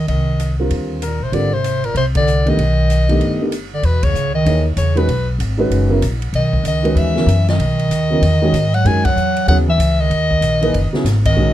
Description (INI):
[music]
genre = modal jazz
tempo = 192 BPM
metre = 4/4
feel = swing 62% on 8ths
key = Ab lydian, E lydian from 3.8 s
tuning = A4 = 443 Hz
[part]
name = breathy soprano saxophone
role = melody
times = 0.0-11.5 s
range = Bb4 to G#5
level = -20 LUFS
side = left 3 dB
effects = none
[part]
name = breathy bass clarinet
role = second line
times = 0.0-11.5 s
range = Bb2 to G#3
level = -20 LUFS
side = right 3 dB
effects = none
[part]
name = upright bass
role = bass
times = 0.0-11.5 s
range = F#1 to G#2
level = -17 LUFS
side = equal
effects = none
[part]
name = swinging big-band drum kit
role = drums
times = 0.1-11.3 s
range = hi-hat, kick drum, ride cymbal, snare drum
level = -26 LUFS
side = equal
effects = none
[part]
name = dark upright piano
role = accompaniment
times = 0.6-11.5 s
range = C#3 to C#5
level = -19 LUFS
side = right 1 dB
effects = none
[sound]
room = light reverb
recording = dark, warm production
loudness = -14 LUFS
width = side -13 dB against mid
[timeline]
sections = 0.0-3.8 A section; 3.8-11.5 B section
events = band accent 2.1, 4.0, 9.0, 11.2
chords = 0.0 Abmaj9#11; 2.6 B7alt; 3.8 Emaj9